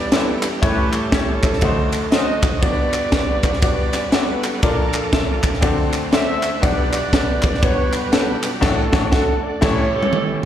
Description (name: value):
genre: uptempo gospel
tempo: 120 BPM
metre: 4/4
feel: swing 61% on 8ths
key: D major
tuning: A4 = 440 Hz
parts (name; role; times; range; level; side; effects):
- mellow horn section; melody; 0.0-10.5 s; C#4 to E5; -24 LUFS; right 3 dB; slapback echo
- clear grand piano; accompaniment; 0.0-9.8 s; G1 to F#5; -22 LUFS; left 2 dB; slapback echo
- bright tonewheel organ; sustained chords; 0.0-10.5 s; B2 to F#5; -27 LUFS; right 2 dB; slow rotary speaker, overdrive, chorus vibrato
- crisp fusion drum kit; drums; 0.1-10.3 s; crash cymbal, kick drum, ride cymbal, snare drum, toms; -19 LUFS; equal; none
- group handclap; percussion; 0.4-8.5 s; none; -28 LUFS; left 1 dB; slapback echo
room: moderate club reverb, RT60 0.5 s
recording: live gig heard through the venue's PA, recital hall reverb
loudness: -16 LUFS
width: side -10 dB against mid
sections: 0.0-10.5 A section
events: band accent 8.6-10.5; drum fill 9.6-10.5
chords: 0.0 G6; 0.6 A7; 1.6 D7b9; 2.6 Gmaj7; 4.6 Bbmaj7; 5.6 D7; 6.6 Gmaj7/B; 8.6 D/A; 9.6 A7